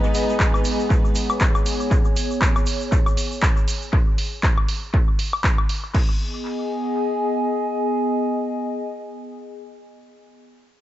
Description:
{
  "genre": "acid house",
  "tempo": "119 BPM",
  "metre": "4/4",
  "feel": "swing 57% on 16ths",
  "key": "G# minor",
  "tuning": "A4 = 440 Hz",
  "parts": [
    { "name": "rich studio string section", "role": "sustained chords", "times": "0.0-1.9 s", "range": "G#3 to B4", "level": "-29 LUFS", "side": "right 1 dB", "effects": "sidechain pumping" },
    { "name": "tube shaker", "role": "percussion", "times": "0.0-3.9 s", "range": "none", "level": "-36 LUFS", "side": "right 1 dB", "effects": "none" },
    { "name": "warbly tape-like pad", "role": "texture", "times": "0.0-10.2 s", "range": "B3 to G#5", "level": "-24 LUFS", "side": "left 1 dB", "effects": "chorus, built-in reverb, sidechain pumping" },
    { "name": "punchy analog drum machine", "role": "drums", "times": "0.1-6.1 s", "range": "crash cymbal, handclaps, hi-hat, woodblock", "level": "-26 LUFS", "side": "equal", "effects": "small room ambience, analog delay" },
    { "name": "electronic kick drum", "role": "drums", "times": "0.4-6.1 s", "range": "none", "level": "-19 LUFS", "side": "equal", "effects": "small room ambience" }
  ],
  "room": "light reverb, digital ambience",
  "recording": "echo-heavy mix, nothing above 7.8 kHz",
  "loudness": "-19 LUFS",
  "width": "side -14 dB against mid",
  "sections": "0.0-5.9 A section; 5.9-10.0 B section",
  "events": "none",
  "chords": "0.0 G#m"
}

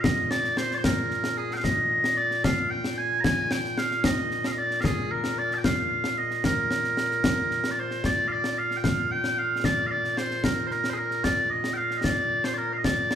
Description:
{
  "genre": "scottish traditional, Scottish pipe music",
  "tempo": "75 BPM (dotted quarters)",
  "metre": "6/8",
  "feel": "straight",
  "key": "Bb mixolydian",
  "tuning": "A4 = 440 Hz",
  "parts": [
    { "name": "loud bright bagpipes", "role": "melody", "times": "0.0-13.2 s", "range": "Bb2 to Bb5", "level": "-25 LUFS", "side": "right 1 dB", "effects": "none" },
    { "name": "concert snare drum and concert bass drum", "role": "drums", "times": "0.0-13.2 s", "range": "none", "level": "-28 LUFS", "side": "left 1 dB", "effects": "none" }
  ],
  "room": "wet recital hall reverb, RT60 1.7 s",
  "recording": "recorded in a church or concert hall",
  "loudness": "-23 LUFS",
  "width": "side -9 dB against mid",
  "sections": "0.0-8.0 A section; 8.0-13.2 B section",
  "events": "none",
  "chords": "none"
}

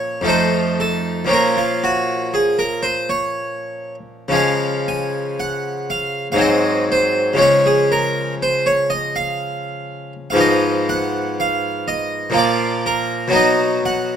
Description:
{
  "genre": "classical, baroque-style suite movement for harpsichord",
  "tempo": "60 BPM",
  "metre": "3/4",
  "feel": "rubato",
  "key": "unclear",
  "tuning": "A4 = 438 Hz",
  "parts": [
    { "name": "harpsichord", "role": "solo", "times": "0.0-14.2 s", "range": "F2 to Ab5", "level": "-16 LUFS", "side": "equal", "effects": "none" }
  ],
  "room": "light reverb",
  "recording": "close, detailed microphones",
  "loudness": "-16 LUFS",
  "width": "side -8 dB against mid",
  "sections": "0.0-14.2 A section",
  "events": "none",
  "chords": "0.3 F7; 1.3 Bbm; 4.3 Db; 6.4 Ab7; 7.4 Db; 10.4 Fdim/Ab; 12.4 Bb; 13.3 B"
}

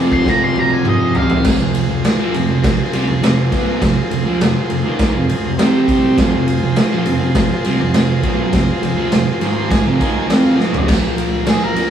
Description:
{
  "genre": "garage rock duo or trio",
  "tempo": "102 BPM",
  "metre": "4/4",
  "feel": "straight",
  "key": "F minor",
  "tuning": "A4 = 440 Hz",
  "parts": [
    { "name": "combo organ", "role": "sustained chords", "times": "0.0-10.9 s", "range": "C4 to C6", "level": "-24 LUFS", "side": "equal", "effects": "none" },
    { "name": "fuzz guitar", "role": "riff", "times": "0.0-11.9 s", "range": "F2 to F4", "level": "-16 LUFS", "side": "right 1 dB", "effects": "distortion" },
    { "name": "octave-fuzz lead guitar", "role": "melody", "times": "0.1-1.4, 11.5-11.9 s", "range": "Ab4 to C6", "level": "-19 LUFS", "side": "equal", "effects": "distortion" },
    { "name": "raw garage drum kit", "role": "drums", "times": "0.1-11.9 s", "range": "crash cymbal, kick drum, ride cymbal, snare drum, toms", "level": "-16 LUFS", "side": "equal", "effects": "none" }
  ],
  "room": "moderate stone room reverb, RT60 1.0 s",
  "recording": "rough rehearsal-room recording, warm saturation, small room ambience",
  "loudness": "-13 LUFS",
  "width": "side -9 dB against mid",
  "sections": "0.0-1.4 A section; 1.4-10.9 B section; 10.9-11.9 C section",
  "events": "drum fill 0.3-1.4, 10.6; transistor combo organ fill 9.1-10.9; lead electric guitar solo 10.9-11.9",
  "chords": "0.0 Fm; 5.6 C5; 6.2 Fm; 10.9 Bb5"
}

